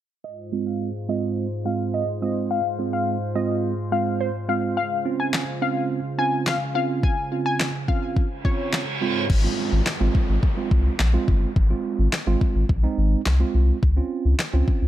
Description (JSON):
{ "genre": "dance-pop", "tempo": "106 BPM", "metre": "4/4", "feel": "straight", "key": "Ab major", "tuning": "A4 = 439 Hz", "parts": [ { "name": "analog pluck", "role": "melody", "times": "0.2-8.7 s", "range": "C5 to Ab5", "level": "-27 LUFS", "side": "left 4 dB", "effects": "chorus, sidechain pumping, low-pass filter, digital delay" }, { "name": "warm analog pad", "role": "sustained chords", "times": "0.2-9.3 s", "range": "Ab2 to C5", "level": "-30 LUFS", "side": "equal", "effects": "chorus, sidechain pumping, low-pass filter" }, { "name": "tine electric piano", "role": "accompaniment", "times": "0.5-14.9 s", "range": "Ab3 to F4", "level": "-26 LUFS", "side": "right 6 dB", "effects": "sidechain pumping, low-pass filter" }, { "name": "smooth R&B drum kit", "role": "drums", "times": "5.3-14.8 s", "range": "crash cymbal, handclaps, kick drum, snare drum", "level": "-23 LUFS", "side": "left 1 dB", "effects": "none" }, { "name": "reverse cymbal and downlifter", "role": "sound effects", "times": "8.4-13.8 s", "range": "none", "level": "-32 LUFS", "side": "right 1 dB", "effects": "none" }, { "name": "warm sub bass", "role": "bass", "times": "9.3-14.9 s", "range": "G1 to Db2", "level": "-20 LUFS", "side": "equal", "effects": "sidechain pumping" } ], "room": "digital ambience", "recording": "dark, warm production", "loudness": "-20 LUFS", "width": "side -12 dB against mid", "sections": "0.2-9.3 A section; 9.3-14.9 B section", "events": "filter sweep 0.2-9.3; reverse cymbal 8.4-9.3", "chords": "0.2 Ab6; 4.8 Dbmaj7; 9.0 Ab6; 13.8 Dbmaj7" }